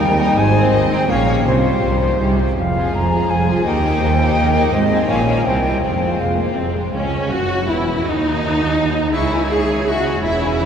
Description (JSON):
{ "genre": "classical, dramatic, fast romantic movement for symphony orchestra", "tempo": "164 BPM", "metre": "3/4", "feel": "straight", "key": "F minor, C# minor from 6.9 s", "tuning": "A4 = 440 Hz", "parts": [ { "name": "warm symphonic violin section", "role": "melody", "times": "0.0-10.7 s", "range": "C#4 to C#6", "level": "-26 LUFS", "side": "left 4 dB", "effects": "none" }, { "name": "bright silver concert flute", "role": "second line", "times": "0.0-6.6 s", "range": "C5 to Bb5", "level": "-22 LUFS", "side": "left 2 dB", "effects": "none" }, { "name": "warm symphonic violin section", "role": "second line", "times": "0.0-10.7 s", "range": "C#4 to F5", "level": "-26 LUFS", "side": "left 1 dB", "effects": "none" }, { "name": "bright symphonic viola section", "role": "accompaniment", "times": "0.0-10.7 s", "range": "F3 to G#4", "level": "-21 LUFS", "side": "right 1 dB", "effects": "none" }, { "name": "mellow French horn section", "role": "sustained chords", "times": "0.0-10.7 s", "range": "C#3 to F4", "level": "-25 LUFS", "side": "left 4 dB", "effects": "none" }, { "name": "rich symphonic cello section", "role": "bass", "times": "0.0-10.7 s", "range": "C#2 to C#3", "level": "-23 LUFS", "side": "right 3 dB", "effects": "none" }, { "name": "rich symphonic double bass section", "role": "bass", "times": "0.0-10.7 s", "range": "E1 to Eb2", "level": "-21 LUFS", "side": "right 2 dB", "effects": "none" }, { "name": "timpani", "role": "percussion", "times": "1.5-2.0, 5.8-6.3 s", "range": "none", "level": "barely audible", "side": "none", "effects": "none" } ], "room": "wet cathedral reverb, RT60 7.4 s", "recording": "none", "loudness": "-15 LUFS", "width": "side -7 dB against mid", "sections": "0.0-6.9 A section; 6.9-10.7 B section", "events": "none", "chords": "0.4 Ab; 1.1 Bbm7; 1.5 Csus4; 2.2 C; 2.6 Fm; 3.7 Eb; 4.7 Ab; 5.1 Bbm7; 5.5 C; 5.8 Fm; 6.9 C#m; 8.1 N.C.; 9.1 C#m" }